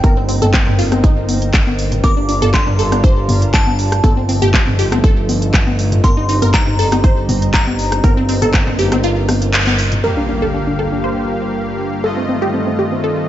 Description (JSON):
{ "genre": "progressive house", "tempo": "120 BPM", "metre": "4/4", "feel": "straight", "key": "G minor", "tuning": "A4 = 436 Hz", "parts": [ { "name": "glassy synth bell", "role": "melody", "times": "0.0-9.9 s", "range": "G5 to D6", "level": "-24 LUFS", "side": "left 1 dB", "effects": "chorus, dub echo" }, { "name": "lush unison pad", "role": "sustained chords", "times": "0.0-13.3 s", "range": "G2 to Bb4", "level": "-23 LUFS", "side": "right 1 dB", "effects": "chorus, sidechain pumping" }, { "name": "wide unison pluck", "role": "arpeggios", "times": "0.0-13.3 s", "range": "C4 to C5", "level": "-20 LUFS", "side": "equal", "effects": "sidechain pumping, tape echo" }, { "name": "fat analog bass", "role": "bass", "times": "0.0-10.0 s", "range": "G1", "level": "-18 LUFS", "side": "equal", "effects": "sidechain pumping" }, { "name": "electronic kick drum", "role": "drums", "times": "0.0-8.6 s", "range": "none", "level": "-13 LUFS", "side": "equal", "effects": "none" }, { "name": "house drum kit", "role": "drums", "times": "0.0-12.9 s", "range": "handclaps, hi-hat, rim click", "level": "-20 LUFS", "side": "equal", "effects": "low-pass filter on hats, low-pass filter on snare" }, { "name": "electronic congas and toms", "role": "percussion", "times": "0.0-10.0 s", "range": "none", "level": "-20 LUFS", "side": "left 1 dB", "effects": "sidechain pumping on perc, sidechain pumping on toms" }, { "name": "soft supersaw", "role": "stabs", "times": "10.0-13.3 s", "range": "G2 to F5", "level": "-20 LUFS", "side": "left 1 dB", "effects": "sidechain pumping, tape echo" }, { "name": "impact", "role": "sound effects", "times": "10.0-12.0 s", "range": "none", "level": "-26 LUFS", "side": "equal", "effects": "none" } ], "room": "light reverb, digital ambience", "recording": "nothing above 7.8 kHz", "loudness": "-12 LUFS", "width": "side -12 dB against mid", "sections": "0.0-10.0 A section; 10.0-13.3 B section", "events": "kick drops out 9.0-10.0; band accent 9.5; impact 10.0-12.0", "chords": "0.0 Cm7/G; 2.0 Gm7; 4.0 F7/G; 6.0 Eb6/G; 8.0 Cm7/G; 10.0 Gm7; 12.0 F7/G" }